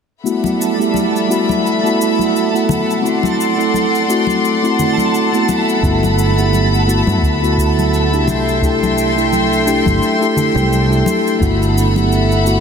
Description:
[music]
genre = sunset chillout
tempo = 86 BPM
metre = 4/4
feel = swing 56% on 16ths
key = G major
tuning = A4 = 440 Hz
[part]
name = mellow tine electric piano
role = accompaniment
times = 0.2-12.6 s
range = A3 to A4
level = -16 LUFS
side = moving between left 4 dB and right 6 dB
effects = auto-pan, low-pass filter, diffuse ambient delay, shimmer reverb
[part]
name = rich studio string section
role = sustained chords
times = 0.2-12.6 s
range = G3 to C6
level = -17 LUFS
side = left 1 dB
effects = shimmer reverb
[part]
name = shaker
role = drums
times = 0.3-12.6 s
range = none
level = -31 LUFS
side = equal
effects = none
[part]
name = twinkling granular texture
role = texture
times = 0.6-11.4 s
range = A5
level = -26 LUFS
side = right 2 dB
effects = built-in reverb, shimmer reverb
[part]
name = congas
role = percussion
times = 0.4-12.1 s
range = none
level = -24 LUFS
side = left 4 dB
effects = none
[part]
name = fretless electric bass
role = bass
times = 5.8-12.6 s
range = G1 to G2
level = -16 LUFS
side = equal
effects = tube saturation
[part]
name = electronic kick drum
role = drums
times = 5.8-11.6 s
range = none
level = -19 LUFS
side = equal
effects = none
[sound]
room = wet lush hall reverb, RT60 2.7 s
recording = dreamy mix soaked in reverb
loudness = -12 LUFS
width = side -6 dB against mid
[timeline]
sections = 0.2-11.4 A section; 11.4-12.6 B section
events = filter sweep on tine electric piano 0.2-11.4; kick drops out 10.0-11.4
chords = 0.2 Gmaj13; 3.0 D7; 5.5 Gmaj13; 8.3 C6; 11.4 Gmaj13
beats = | 0.25 0.95 1.64 2.34 | 3.04 3.74 4.43 5.13 | 5.83 6.53 7.22 7.92 | 8.62 9.32 10.02 10.71 | 11.41 12.11

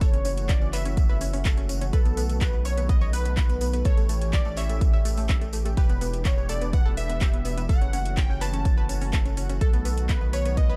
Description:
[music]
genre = progressive house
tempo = 125 BPM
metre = 4/4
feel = straight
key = unclear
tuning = A4 = 441 Hz
[part]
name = unison lead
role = melody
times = 0.0-10.8 s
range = A4 to A5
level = -37 LUFS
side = equal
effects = sidechain pumping, tape echo
[part]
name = glassy wavetable pluck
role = second line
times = 0.0-10.8 s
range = A4 to A5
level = -41 LUFS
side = equal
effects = chorus, sidechain pumping, delay
[part]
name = lush unison pad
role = sustained chords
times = 0.0-10.8 s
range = D#3 to G4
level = -40 LUFS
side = equal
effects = chorus, sidechain pumping
[part]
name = analog pluck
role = arpeggios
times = 0.0-10.8 s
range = A3 to E5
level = -38 LUFS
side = equal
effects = chorus, sidechain pumping, delay
[part]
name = saturated sub bass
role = bass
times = 0.0-10.8 s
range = E1 to B1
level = -30 LUFS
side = equal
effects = sidechain pumping
[part]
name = electronic kick drum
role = drums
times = 0.0-10.7 s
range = none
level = -24 LUFS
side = equal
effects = none
[part]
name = pop drum kit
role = drums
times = 0.0-10.7 s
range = handclaps, hi-hat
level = -38 LUFS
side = equal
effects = overdrive, sidechain pumping on hats
[part]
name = tambourine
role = percussion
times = 0.0-10.8 s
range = none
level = -46 LUFS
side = equal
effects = none
[sound]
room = little or no reverb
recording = dark, warm production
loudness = -24 LUFS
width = mono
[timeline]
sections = 0.0-10.8 A section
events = none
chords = 0.0 F#m7; 1.9 B7; 3.9 A7; 5.8 Em7; 7.7 F#m7; 9.6 B7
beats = | 0.01 0.49 0.97 1.45 | 1.93 2.41 2.89 3.37 | 3.85 4.33 4.81 5.29 | 5.77 6.25 6.73 7.21 | 7.69 8.17 8.65 9.13 | 9.61 10.09 10.57

